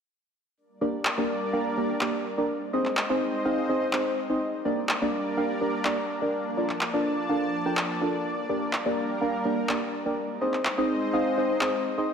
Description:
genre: progressive house.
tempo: 125 BPM.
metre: 4/4.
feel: straight.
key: G minor.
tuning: A4 = 441 Hz.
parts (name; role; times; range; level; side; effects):
lush unison pad; sustained chords; 0.9-12.1 s; F3 to A5; -31 LUFS; left 1 dB; chorus.
deep mellow chord stab; stabs; 0.8-12.1 s; Bb3 to G5; -27 LUFS; right 1 dB; analog chorus, digital delay.
electronic handclaps; drums; 1.1-11.7 s; none; -30 LUFS; equal; overdrive.
room: moderate concert hall reverb, RT60 2.2 s.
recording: none.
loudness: -24 LUFS.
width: side -7 dB against mid.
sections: 0.6-12.1 A section.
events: none.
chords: 0.6 Gm; 2.5 Ab; 4.4 Gm; 6.3 Bbmaj7; 8.3 Gm; 10.2 Ab.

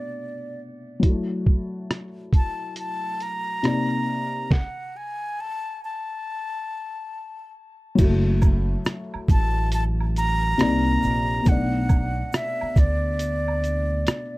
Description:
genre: lo-fi hip hop.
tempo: 69 BPM.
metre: 4/4.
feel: swing 64% on 16ths.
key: F# minor.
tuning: A4 = 440 Hz.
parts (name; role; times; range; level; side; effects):
breathy concert flute; melody; 0.0-14.4 s; D5 to A#5; -28 LUFS; equal; analog delay.
felt-muted upright piano; accompaniment; 0.0-14.4 s; B2 to D5; -27 LUFS; left 2 dB; cassette tape.
lo-fi sampler-style drum kit; drums; 1.0-14.3 s; crash cymbal, hi-hat, kick drum, rim click, shaker, snare drum; -20 LUFS; equal; none.
upright bass; bass; 8.0-14.0 s; F#1 to D2; -24 LUFS; equal; none.
egg shaker and woodblock; percussion; 8.0-14.3 s; none; -40 LUFS; right 6 dB; none.
room: light reverb.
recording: dark, warm production.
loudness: -21 LUFS.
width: side -20 dB against mid.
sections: 0.0-8.0 A section; 8.0-14.4 B section.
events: stop 4.5-8.0.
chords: 0.0 Bm7; 1.0 F#m7; 3.6 Cm9; 4.5 N.C.; 8.0 F#m7; 10.6 Cm9; 11.5 Bm7.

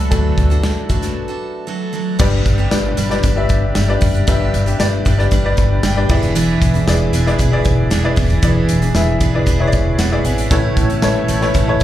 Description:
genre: piano-driven pop.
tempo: 116 BPM.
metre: 4/4.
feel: straight.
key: unclear.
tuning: A4 = 440 Hz.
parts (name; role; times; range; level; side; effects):
clear upright piano; accompaniment; 0.0-11.8 s; G2 to B5; -20 LUFS; left 3 dB; slapback echo.
picked steel-string acoustic guitar; riff; 0.0-11.8 s; D3 to B4; -22 LUFS; right 6 dB; slapback echo.
upright bass; bass; 0.0-11.8 s; D#1 to D2; -17 LUFS; equal; none.
modern studio drum kit; drums; 0.1-11.8 s; crash cymbal, hi-hat, kick drum, snare drum; -18 LUFS; equal; none.
tambourine; percussion; 2.5-11.8 s; none; -34 LUFS; left 3 dB; none.
room: light reverb.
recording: live gig heard through the venue's PA, club reverb.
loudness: -13 LUFS.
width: side -13 dB against mid.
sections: 0.0-2.2 A section; 2.2-11.8 B section.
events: upright piano solo 0.0-2.2; break 1.2-2.2; upright piano fill 5.3-6.4, 9.7-10.5.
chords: 0.0 D; 2.2 G; 6.1 E7; 10.5 Aadd9.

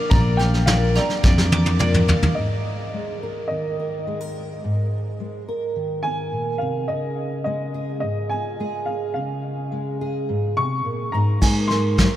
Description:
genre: indie folk with a building arrangement.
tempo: 106 BPM.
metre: 4/4.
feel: straight.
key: unclear.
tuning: A4 = 440 Hz.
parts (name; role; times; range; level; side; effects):
picked twelve-string acoustic guitar; accompaniment; 0.0-2.4, 11.4-12.2 s; Bb2 to Bb4; -31 LUFS; left 4 dB; none.
warm concert grand piano; accompaniment; 0.0-2.4 s; Bb1 to D5; -32 LUFS; left 4 dB; none.
mandolin; arpeggios; 0.0-2.4 s; D5 to D6; -32 LUFS; right 3 dB; analog delay.
dark upright piano; melody; 0.1-12.2 s; D5 to Db6; -28 LUFS; equal; analog delay.
fingered electric bass; bass; 0.1-2.1, 11.4-12.1 s; Bb1 to Ab2; -19 LUFS; equal; none.
vintage brush drum kit; drums; 0.1-2.4, 11.4-12.1 s; crash cymbal, kick drum, snare drum, toms; -20 LUFS; equal; none.
fingerpicked steel-string acoustic guitar; accompaniment; 2.4-12.2 s; Ab2 to Bb4; -25 LUFS; right 1 dB; wide subtle chorus.
room: moderate huge ambient reverb, RT60 7.4 s.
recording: dreamy mix soaked in reverb.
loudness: -20 LUFS.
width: side -12 dB against mid.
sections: 0.0-2.4 A section; 2.4-11.4 B section.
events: drum fill 1.2-2.4, 11.4-12.2.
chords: 0.0 Bb; 2.4 Absus2; 6.9 Db; 11.1 Absus2.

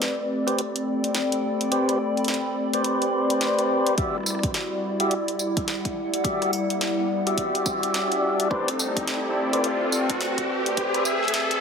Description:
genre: glitch hop.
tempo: 106 BPM.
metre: 4/4.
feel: swing 61% on 16ths.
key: unclear.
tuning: A4 = 440 Hz.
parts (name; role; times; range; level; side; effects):
warm analog pad; sustained chords; 0.0-11.6 s; G3 to E5; -27 LUFS; left 1 dB; chorus, vintage 12-bit sampler grit, sidechain pumping.
pop drum kit; drums; 0.0-11.6 s; hi-hat, rim click, snare drum, tambourine; -29 LUFS; equal; high-pass filter on hats, high-pass filter on snare, high-pass filter on perc.
warbly tape-like pad; texture; 0.0-11.6 s; G3 to B5; -30 LUFS; equal; chorus, built-in reverb, sidechain pumping.
tonewheel organ; stabs; 0.5-11.0 s; F#4 to E5; -27 LUFS; equal; overdrive, slow rotary speaker, vintage 12-bit sampler grit, sidechain pumping, low-pass filter, dub echo.
electronic kick drum; drums; 4.0-10.9 s; none; -29 LUFS; equal; none.
riser; sound effects; 5.7-11.6 s; none; -30 LUFS; right 1 dB; none.
room: moderate lush hall reverb, RT60 1.8 s, digital ambience.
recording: high-pass filter.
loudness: -22 LUFS.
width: side -6 dB against mid.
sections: 0.0-11.6 A section.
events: build-up 0.0-11.6; filter sweep on analog synth pad 0.0-11.6; riser 5.7-11.6.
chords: 0.0 Am11; 4.0 Em9; 8.5 Am11.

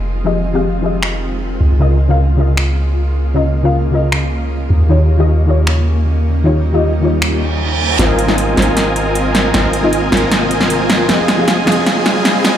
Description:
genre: future bass.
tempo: 155 BPM.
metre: 4/4.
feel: half-time.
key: Ab major.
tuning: A4 = 440 Hz.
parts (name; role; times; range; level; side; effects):
soft round pluck; accompaniment; 0.0-12.6 s; Db3 to F5; -18 LUFS; left 2 dB; ensemble chorus, tape echo.
shimmering ambient pad; sustained chords; 0.0-12.6 s; C3 to F4; -24 LUFS; equal; chorus, built-in reverb.
long sustained 808-style bass; bass; 0.0-12.6 s; F1 to Eb2; -16 LUFS; equal; none.
big-room dance drum kit; drums; 1.0-12.5 s; finger snaps, hi-hat, snare drum; -17 LUFS; right 1 dB; low-pass filter on cymbals, small room ambience, low-pass filter on snare, low-pass filter on hats.
reverse cymbal and riser; sound effects; 7.4-12.6 s; none; -23 LUFS; right 3 dB; none.
supersaw chords; riff; 8.0-12.6 s; C4 to Ab5; -15 LUFS; equal; low-pass filter, tape echo.
room: light reverb.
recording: played on a big sound system in a bare room, large studio reverb, high-pass filter.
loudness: -12 LUFS.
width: side -10 dB against mid.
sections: 0.0-8.0 A section; 8.0-12.6 B section.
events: reverse cymbal 7.4-8.0; build-up 8.0-12.6; drum fill 8.0-12.6; filter sweep on supersaw synth 8.0-12.6.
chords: 0.0 Fm7; 1.6 Db6; 4.7 Eb7; 8.0 Ab69; 11.1 Fm7.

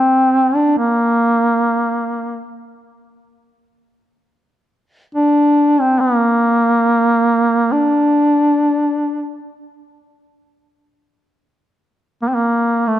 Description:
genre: caucasian folk, Caucasian lament.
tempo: free time.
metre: none.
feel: none.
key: unclear.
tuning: A4 = 440 Hz.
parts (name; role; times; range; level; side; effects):
warm duduk; solo; 0.0-13.0 s; A3 to D4; -13 LUFS; equal; none.
room: moderate concert hall reverb, RT60 2.5 s.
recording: dark, warm production.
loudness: -13 LUFS.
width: side -12 dB against mid.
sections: 0.0-13.0 A section.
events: none.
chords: none.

